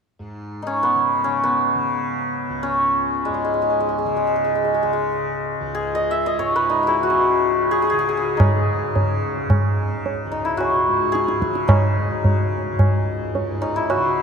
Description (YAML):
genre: indian classical, Hindustani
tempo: free time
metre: none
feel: none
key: C# raga darbari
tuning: A4 = 440 Hz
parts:
  - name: tanpura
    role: drone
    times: 0.2-14.2 s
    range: C#2 to C#3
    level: -29 LUFS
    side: equal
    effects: none
  - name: santur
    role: melody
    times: 0.6-14.2 s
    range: G#3 to E5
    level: -19 LUFS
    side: left 1 dB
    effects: tape echo
  - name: tabla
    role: percussion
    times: 8.4-14.1 s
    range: none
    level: -20 LUFS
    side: right 1 dB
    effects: none
room: wet cathedral reverb, RT60 6.0 s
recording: in a vast, echoing space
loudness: -18 LUFS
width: side -6 dB against mid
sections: 0.2-8.4 A section; 8.4-14.2 B section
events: none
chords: none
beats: free time